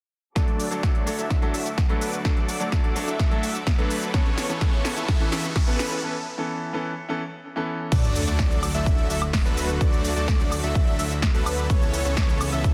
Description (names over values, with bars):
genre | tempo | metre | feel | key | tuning
EDM, festival progressive house | 127 BPM | 4/4 | straight | D major | A4 = 439 Hz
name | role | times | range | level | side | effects
bright grand piano | accompaniment | 0.4-7.9 s | E3 to A4 | -33 LUFS | equal | sidechain pumping, digital delay
clear symphonic string section | sustained chords | 0.4-12.7 s | C#3 to D6 | -39 LUFS | equal | none
unison lead | arpeggios | 0.4-12.7 s | B4 to E5 | -37 LUFS | equal | sidechain pumping, digital delay
supersaw chords | riff | 0.4-12.7 s | E3 to E5 | -32 LUFS | equal | sidechain pumping, low-pass filter, digital delay
detuned saw bass | bass | 0.4-12.7 s | C#2 to D2 | -33 LUFS | equal | sidechain pumping, high-pass filter
big-room dance drum kit | drums | 0.4-12.7 s | crash cymbal, hi-hat, shaker, snare drum, woodblock | -34 LUFS | equal | none
electronic kick drum | drums | 0.4-12.7 s | none | -24 LUFS | equal | none
riser and sub drop | sound effects | 3.4-9.8 s | none | -36 LUFS | equal | none
room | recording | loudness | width
light reverb | dense, heavily limited modern master | -24 LUFS | mono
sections
0.4-7.9 A section; 7.9-12.7 B section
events
build-up 0.4-7.9; drum fill 0.4-6.0; filter sweep on supersaw synth 0.4-7.9; break 6.0-7.9; drop 7.9-12.7; impact 7.9-9.8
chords
0.4 D; 4.1 Aadd9/C#; 7.9 D; 11.7 Aadd9/C#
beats
| 0.36 0.83 1.30 1.78 | 2.25 2.72 3.19 3.67 | 4.14 4.61 5.08 5.56 | 6.03 6.50 6.97 7.45 | 7.92 8.39 8.86 9.34 | 9.81 10.28 10.75 11.23 | 11.70 12.17 12.64